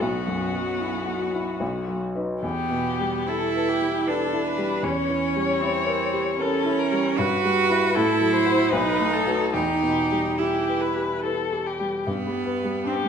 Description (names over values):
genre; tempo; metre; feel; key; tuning
classical, slow romantic movement for piano trio; 68-80 BPM; 3/4; rubato; E minor; A4 = 440 Hz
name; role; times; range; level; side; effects
rich violin; melody; 0.0-13.1 s; F#4 to C#5; -27 LUFS; left 6 dB; none
rich cello; second line; 0.0-13.1 s; A3 to F#4; -25 LUFS; right 5 dB; none
warm grand piano; accompaniment; 0.0-13.1 s; B1 to C5; -26 LUFS; left 1 dB; none
room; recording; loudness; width
wet recital hall reverb, RT60 1.4 s; minimal, uncompressed stereo recording; -21 LUFS; side -7 dB against mid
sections
0.0-12.1 A section; 12.1-13.1 B section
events
none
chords
0.0 Bsus4; 1.6 B; 2.4 Em; 4.8 Edim7; 7.2 Em/G; 7.9 F#m7b5/A; 8.7 B7; 9.5 Em; 12.1 G